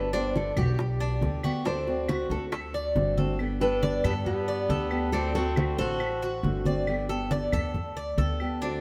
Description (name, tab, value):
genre	latin, Cuban son and guajira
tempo	138 BPM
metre	4/4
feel	straight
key	G major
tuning	A4 = 440 Hz
part	nylon-string guitar	melody	0.0-6.4 s	F#4 to C5	-33 LUFS	equal	none
part	fingerpicked steel-string acoustic guitar	accompaniment	0.0-8.8 s	D3 to G4	-36 LUFS	equal	none
part	Cuban tres	arpeggios	0.0-8.8 s	D4 to D5	-34 LUFS	equal	none
part	upright bass	bass	0.0-8.8 s	G1 to G2	-34 LUFS	equal	none
part	bongos	percussion	0.1-3.2 s	none	-40 LUFS	equal	none
part	congas	percussion	0.1-8.8 s	none	-33 LUFS	equal	none
part	claves	percussion	0.6-8.6 s	none	-43 LUFS	equal	none
part	brilliant trumpet	second line	3.6-6.4 s	B3 to F#4	-39 LUFS	equal	none
room	moderate plate reverb, RT60 3.2 s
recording	heard from further back in the room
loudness	-28 LUFS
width	mono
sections	0.0-3.4 A section; 3.4-8.8 B section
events	nylon-string guitar solo 0.0-3.4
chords	0.0 G; 1.7 D7; 3.4 Gadd9; 5.1 D7; 6.9 Gadd9